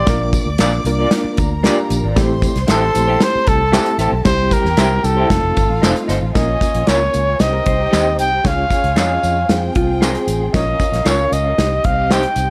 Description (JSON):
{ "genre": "uptempo 1960s-style soul", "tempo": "115 BPM", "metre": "4/4", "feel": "straight", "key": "unclear", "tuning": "A4 = 440 Hz", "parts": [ { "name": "breathy trumpet", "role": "melody", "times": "0.0-12.5 s", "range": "A4 to G5", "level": "-20 LUFS", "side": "equal", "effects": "none" }, { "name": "warm studio violin section", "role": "second line", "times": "0.0-12.5 s", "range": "C4 to D6", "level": "-29 LUFS", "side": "equal", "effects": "none" }, { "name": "electric guitar through a small old amp", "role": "riff", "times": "0.0-0.1, 7.5-10.5 s", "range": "F4 to C5", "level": "-25 LUFS", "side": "equal", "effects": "none" }, { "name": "vintage muted fingered electric bass", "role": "bass", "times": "0.0-12.5 s", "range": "F1 to F2", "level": "-23 LUFS", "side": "equal", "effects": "none" }, { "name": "bright reed electric piano", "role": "accompaniment", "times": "0.1-12.5 s", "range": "G3 to Eb5", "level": "-25 LUFS", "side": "equal", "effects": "fast tremolo" }, { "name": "natural country drum kit", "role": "drums", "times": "0.1-12.5 s", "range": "hi-hat, kick drum, snare drum", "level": "-21 LUFS", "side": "equal", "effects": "none" }, { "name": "tambourine and handclaps", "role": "percussion", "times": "0.1-12.5 s", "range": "none", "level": "-29 LUFS", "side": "equal", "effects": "none" }, { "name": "electric guitar through a small old amp", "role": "stabs", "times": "0.6-12.2 s", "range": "Eb4 to D5", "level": "-26 LUFS", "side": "equal", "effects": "tremolo, analog delay" } ], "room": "light reverb, small room ambience", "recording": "none", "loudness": "-16 LUFS", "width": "mono", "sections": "0.0-6.3 A section; 6.3-12.5 B section", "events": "none", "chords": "0.1 Bb; 2.2 Am7; 4.3 C; 5.3 F7; 6.3 Bbm; 7.4 Cm; 8.4 Db; 9.5 Fm; 10.5 Bbm; 11.6 Cm", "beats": "| 0.07 0.59 1.12 1.64 | 2.16 2.69 3.21 3.73 | 4.26 4.78 5.30 5.83 | 6.35 6.87 7.40 7.92 | 8.44 8.97 9.49 10.02 | 10.54 11.06 11.59 12.11" }